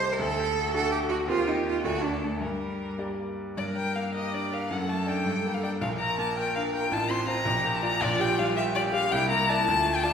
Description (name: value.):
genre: quick classical-period movement for piano trio.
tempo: 109 BPM (dotted quarters).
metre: 6/8.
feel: straight.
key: G minor.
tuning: A4 = 440 Hz.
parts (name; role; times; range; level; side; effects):
rich violin; melody; 0.0-10.1 s; F#4 to C6; -29 LUFS; left 3 dB; none.
clear cello; second line; 0.0-10.1 s; G3 to C5; -30 LUFS; right 4 dB; none.
bright grand piano; accompaniment; 0.0-10.1 s; A1 to D5; -29 LUFS; left 1 dB; none.
room: wet recital hall reverb, RT60 1.4 s.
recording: recorded in a church or concert hall.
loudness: -25 LUFS.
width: side -7 dB against mid.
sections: 0.0-3.6 A section; 3.6-10.1 B section.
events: none.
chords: 0.2 D; 1.3 Cm/Eb; 1.8 D5; 2.4 Gm; 4.7 D/F#; 5.3 Gm; 5.8 Bb; 6.9 F/A; 7.5 Bb; 8.0 Gm7/Bb; 9.1 C9.